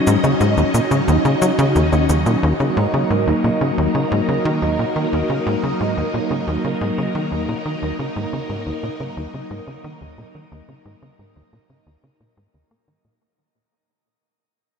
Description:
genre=ambient, sequencer-driven space music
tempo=89 BPM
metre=4/4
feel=straight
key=Eb minor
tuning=A4 = 442 Hz
part: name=phased string machine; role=sustained chords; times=0.0-13.2 s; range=Gb3 to Eb5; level=-21 LUFS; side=left 1 dB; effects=ensemble chorus, phaser
part: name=tight sequencer bass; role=riff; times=0.1-13.2 s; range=Eb2 to Bb3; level=-20 LUFS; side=equal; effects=tape echo
part: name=cabasa and woodblock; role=percussion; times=0.1-2.4 s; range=none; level=-30 LUFS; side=left 4 dB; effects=overdrive, tape echo
part: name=vibraphone with soft mallets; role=arpeggios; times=2.6-13.0 s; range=Eb4 to Eb5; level=-28 LUFS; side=right 4 dB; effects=auto-pan, tape echo
room=wet shimmer reverb, RT60 6.7 s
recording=dark, warm production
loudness=-17 LUFS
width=side -6 dB against mid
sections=0.0-2.4 A section; 2.4-13.2 B section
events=fade-out on vibraphone 2.4-13.2; fade-out 2.4-13.2; filter sweep on analog synth bass 2.4-13.2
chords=0.0 Ebm7

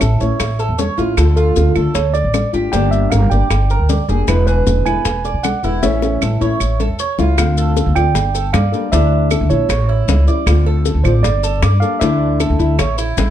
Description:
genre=latin, Cuban son and guajira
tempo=155 BPM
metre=4/4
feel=straight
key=D minor from 7.4 s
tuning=A4 = 442 Hz
part: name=mellow tine electric piano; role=melody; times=0.0-13.1 s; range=A4 to G#5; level=-21 LUFS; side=moving between left 1 dB and right 11 dB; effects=auto-pan
part: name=nylon-string guitar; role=accompaniment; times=0.0-12.8 s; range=B2 to A4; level=-20 LUFS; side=left 6 dB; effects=none
part: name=Cuban tres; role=arpeggios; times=0.0-13.3 s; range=C#4 to D5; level=-23 LUFS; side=right 6 dB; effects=none
part: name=upright bass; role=bass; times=0.0-13.3 s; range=E1 to G2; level=-15 LUFS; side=equal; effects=none
part: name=bongos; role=percussion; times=0.0-13.3 s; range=none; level=-23 LUFS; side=left 5 dB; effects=none
part: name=claves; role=percussion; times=0.0-13.0 s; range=none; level=-27 LUFS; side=right 12 dB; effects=none
part: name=maracas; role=percussion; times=0.0-13.3 s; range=none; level=-29 LUFS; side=left 9 dB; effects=none
room=light reverb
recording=dark, warm production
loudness=-13 LUFS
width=side -11 dB against mid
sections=0.0-7.4 A section; 7.4-13.3 B section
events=drum fill 5.8-7.4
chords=0.0 A; 1.2 Dm; 2.7 Gm; 4.3 E7; 5.8 A; 7.4 Dm7; 8.2 Gmadd9; 8.9 Dsus2; 9.7 A7; 10.5 Dm7; 11.2 Gmadd9; 12.0 Dsus2; 12.8 A

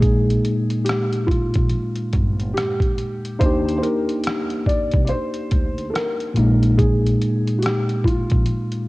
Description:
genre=lo-fi hip hop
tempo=71 BPM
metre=4/4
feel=swing 61% on 16ths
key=unclear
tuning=A4 = 438 Hz
part: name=felt-muted upright piano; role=melody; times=0.0-8.9 s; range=F4 to D5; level=-26 LUFS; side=equal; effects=low-pass filter, cassette tape
part: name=tine electric piano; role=accompaniment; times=0.0-8.9 s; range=Bb2 to G4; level=-21 LUFS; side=equal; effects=medium stereo tremolo, cassette tape, low-pass filter
part: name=upright bass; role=bass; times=0.0-8.5 s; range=G1 to Eb2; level=-23 LUFS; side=equal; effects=none
part: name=trip hop sampler-style drum kit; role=drums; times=0.0-8.9 s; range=hi-hat, kick drum, rim click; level=-21 LUFS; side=equal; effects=cassette tape
room=small room ambience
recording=home recording on cassette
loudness=-18 LUFS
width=side -20 dB against mid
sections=0.0-8.9 A section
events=none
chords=0.0 Bb7sus4; 3.4 Ebmaj7; 6.4 Bb7sus4

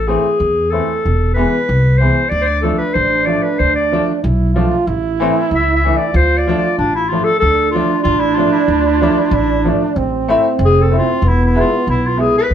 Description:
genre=klezmer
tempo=94 BPM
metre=2/4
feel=straight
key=D dorian sharp4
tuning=A4 = 441 Hz
part: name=warm clarinet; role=melody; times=0.0-12.5 s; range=D4 to E5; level=-16 LUFS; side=left 1 dB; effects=none
part: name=upright bass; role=bass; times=0.0-12.5 s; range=E1 to E2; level=-17 LUFS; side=equal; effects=none
part: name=clear upright piano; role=accompaniment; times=0.1-12.3 s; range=E3 to E4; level=-18 LUFS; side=left 2 dB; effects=none
part: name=trombone with bucket mute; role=second line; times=2.4-12.5 s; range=G#3 to F4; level=-18 LUFS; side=right 5 dB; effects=none
room=wet studio reverb, RT60 0.6 s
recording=heard from further back in the room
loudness=-12 LUFS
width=side -9 dB against mid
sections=0.0-7.4 A section; 7.4-12.5 B section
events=clarinet solo 0.0-7.4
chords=0.0 Am; 1.1 E; 2.3 Dm; 4.9 A5; 6.2 Dm; 10.0 Am; 11.2 E

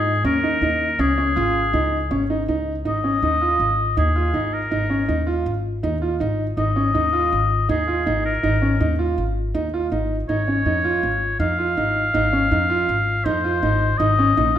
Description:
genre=contemporary instrumental, chamber music in an uneven meter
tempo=161 BPM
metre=5/4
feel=straight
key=Ab major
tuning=A4 = 441 Hz
part: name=clear oboe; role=melody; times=0.0-14.6 s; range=Ab4 to F5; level=-22 LUFS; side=left 2 dB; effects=none
part: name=warm concert grand piano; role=arpeggios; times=0.0-14.6 s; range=Db4 to F4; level=-22 LUFS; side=right 2 dB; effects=none
part: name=upright bass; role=bass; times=0.0-14.6 s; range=Ab1 to Ab2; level=-23 LUFS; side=equal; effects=none
room=wet recital hall reverb, RT60 1.4 s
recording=minimal, uncompressed stereo recording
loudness=-18 LUFS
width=side -10 dB against mid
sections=0.0-2.9 A section; 2.9-14.6 B section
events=none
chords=0.0 Absus2; 1.0 Ab5; 14.0 Eb7(no3)/Ab

